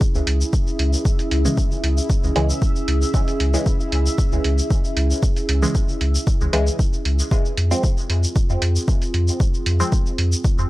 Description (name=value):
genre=dub techno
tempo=115 BPM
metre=4/4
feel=straight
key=F harmonic minor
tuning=A4 = 439 Hz
part: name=dark analog pad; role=sustained chords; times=0.0-10.7 s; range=C4 to Ab4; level=-28 LUFS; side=right 1 dB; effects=chorus, sidechain pumping
part: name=electronic kick drum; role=drums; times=0.0-10.6 s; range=none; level=-19 LUFS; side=equal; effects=none
part: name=electronic shaker and hi-hat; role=drums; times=0.0-10.7 s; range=none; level=-28 LUFS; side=right 1 dB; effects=overdrive
part: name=bubbling stepped-filter texture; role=texture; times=0.0-7.3 s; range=Fb4 to Fb5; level=-33 LUFS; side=equal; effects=chorus, built-in reverb, sidechain pumping
part: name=warm sub bass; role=bass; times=0.1-10.7 s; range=Db2 to F2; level=-19 LUFS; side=equal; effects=sidechain pumping
part: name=filtered dub chord stab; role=stabs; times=1.5-10.1 s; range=Db3 to C4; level=-26 LUFS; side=equal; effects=chorus, phaser, sidechain pumping, dub echo
room=digital ambience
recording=dry, gritty hardware recording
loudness=-17 LUFS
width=side -18 dB against mid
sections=0.0-7.3 A section; 7.3-10.7 A section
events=none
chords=0.0 Dbm; 7.3 Fm